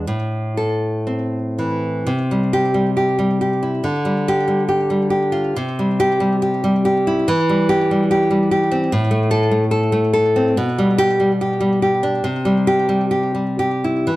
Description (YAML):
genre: romantic piece for solo classical guitar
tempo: 58-75 BPM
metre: 2/4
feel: rubato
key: C major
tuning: A4 = 437 Hz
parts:
  - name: nylon-string guitar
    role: solo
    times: 0.0-14.2 s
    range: A2 to A4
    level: -16 LUFS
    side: equal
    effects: slapback echo
room: light reverb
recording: dry, close 1970s-style studio recording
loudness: -16 LUFS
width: side -17 dB against mid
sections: 0.0-2.1 A section; 2.1-14.2 B section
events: none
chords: 0.1 Am; 2.1 C; 3.9 G5/D; 5.6 C; 7.3 C/E; 8.9 Am; 10.6 G/B; 12.2 C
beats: | 0.07 1.08 | 2.09 2.98 | 3.85 4.71 | 5.58 6.43 | 7.28 8.11 | 8.92 9.73 | 10.56 11.38 | 12.24 13.14 | 14.10